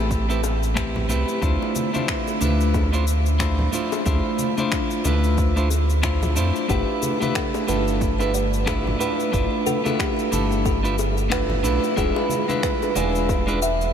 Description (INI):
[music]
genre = sunset chillout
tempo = 91 BPM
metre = 4/4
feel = swing 58% on 16ths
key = unclear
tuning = A4 = 441 Hz
[part]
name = clean electric guitar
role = accompaniment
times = 0.0-13.6 s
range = G#3 to C5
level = -23 LUFS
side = equal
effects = auto-pan, vintage 12-bit sampler grit, ping-pong delay
[part]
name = round analog bass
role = bass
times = 0.0-13.9 s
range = E1 to F2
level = -22 LUFS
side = equal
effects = none
[part]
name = electronic cabasa and finger snaps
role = drums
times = 0.1-13.9 s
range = none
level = -31 LUFS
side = left 3 dB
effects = overdrive
[part]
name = electronic kick drum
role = drums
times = 0.1-13.4 s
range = none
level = -27 LUFS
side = equal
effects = overdrive
[part]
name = bongos and congas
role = percussion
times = 0.4-13.4 s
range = none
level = -32 LUFS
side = left 4 dB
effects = none
[part]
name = kalimba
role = arpeggios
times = 6.7-13.9 s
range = G4 to E5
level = -26 LUFS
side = right 1 dB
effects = ping-pong delay
[sound]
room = wet huge ambient reverb, RT60 7.8 s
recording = dreamy mix soaked in reverb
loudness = -19 LUFS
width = side -8 dB against mid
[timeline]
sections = 0.0-13.9 A section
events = none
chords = 0.0 Am9; 1.4 Dm9; 6.7 G13; 12.0 E7b9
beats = 0.11 0.77 | 1.43 2.09 2.75 3.40 | 4.06 4.72 5.38 6.04 | 6.70 7.36 8.02 8.68 | 9.34 10.00 10.66 11.32 | 11.98 12.64 13.29